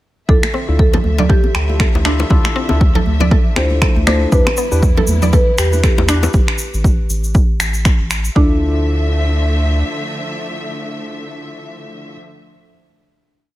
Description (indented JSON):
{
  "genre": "afro house",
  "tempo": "119 BPM",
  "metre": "4/4",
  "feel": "swing 58% on 16ths",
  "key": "D dorian",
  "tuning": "A4 = 440 Hz",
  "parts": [
    { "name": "marimba with medium mallets", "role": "melody", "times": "0.3-12.1 s", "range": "D4 to C5", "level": "-22 LUFS", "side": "equal", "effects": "digital delay" },
    { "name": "rich studio string section", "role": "sustained chords", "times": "0.3-12.2 s", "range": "D3 to E5", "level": "-26 LUFS", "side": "equal", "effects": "sidechain pumping" },
    { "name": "mallet-like synth pluck", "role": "arpeggios", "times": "0.3-8.6 s", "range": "B3 to D5", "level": "-24 LUFS", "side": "right 1 dB", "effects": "chorus, phaser, sidechain pumping, digital delay" },
    { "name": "tine electric piano", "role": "stabs", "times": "0.3-12.2 s", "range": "D4 to B4", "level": "-26 LUFS", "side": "left 3 dB", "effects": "phaser, sidechain pumping, digital delay" },
    { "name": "round analog bass", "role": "bass", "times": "0.3-9.8 s", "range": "A1 to E2", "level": "-17 LUFS", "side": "equal", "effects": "sidechain pumping" },
    { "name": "electronic kick drum", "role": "drums", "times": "0.3-8.5 s", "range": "none", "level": "-14 LUFS", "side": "equal", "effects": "overdrive" },
    { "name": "electronic finger snaps", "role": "drums", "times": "0.4-8.2 s", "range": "none", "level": "-21 LUFS", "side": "equal", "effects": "overdrive" },
    { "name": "congas", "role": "percussion", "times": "0.4-6.2 s", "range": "none", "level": "-21 LUFS", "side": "right 3 dB", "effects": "none" },
    { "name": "bongos", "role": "percussion", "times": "0.5-6.3 s", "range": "none", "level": "-23 LUFS", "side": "left 4 dB", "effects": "none" },
    { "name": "tube shaker", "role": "percussion", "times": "4.3-8.3 s", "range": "none", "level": "-27 LUFS", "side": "equal", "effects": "none" }
  ],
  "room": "small room ambience",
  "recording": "none",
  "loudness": "-12 LUFS",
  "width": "side -16 dB against mid",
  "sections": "0.3-8.4 groove; 8.4-12.4 final chord",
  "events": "none",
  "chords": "0.3 Dmadd9; 4.3 Em7; 6.3 N.C.; 8.4 Dmadd9"
}